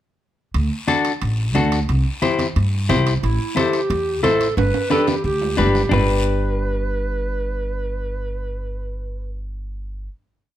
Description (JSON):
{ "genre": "latin, cumbia", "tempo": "179 BPM", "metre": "4/4", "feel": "straight", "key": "G major", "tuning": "A4 = 440 Hz", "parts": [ { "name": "upright bass", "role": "bass", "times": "0.5-10.1 s", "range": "G1 to G2", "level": "-22 LUFS", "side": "equal", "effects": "none" }, { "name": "guiro", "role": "percussion", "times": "0.5-6.0 s", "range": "none", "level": "-33 LUFS", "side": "left 3 dB", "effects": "none" }, { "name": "timbales", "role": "percussion", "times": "0.5-6.0 s", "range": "none", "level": "-28 LUFS", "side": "right 7 dB", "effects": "none" }, { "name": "semi-hollow electric guitar", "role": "accompaniment", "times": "0.9-10.1 s", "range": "D4 to C5", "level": "-21 LUFS", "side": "left 4 dB", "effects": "none" }, { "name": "congas", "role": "percussion", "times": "0.9-6.0 s", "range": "none", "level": "-26 LUFS", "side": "right 2 dB", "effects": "none" }, { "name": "warm clarinet", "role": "second line", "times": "3.2-9.4 s", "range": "E4 to B4", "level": "-24 LUFS", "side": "right 2 dB", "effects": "none" } ], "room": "light reverb", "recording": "none", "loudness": "-18 LUFS", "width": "side -12 dB against mid", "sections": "0.5-5.9 A section; 5.9-8.6 final chord", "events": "drum fill 4.6-5.9", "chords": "0.5 D; 1.9 C; 3.2 Am; 4.6 G" }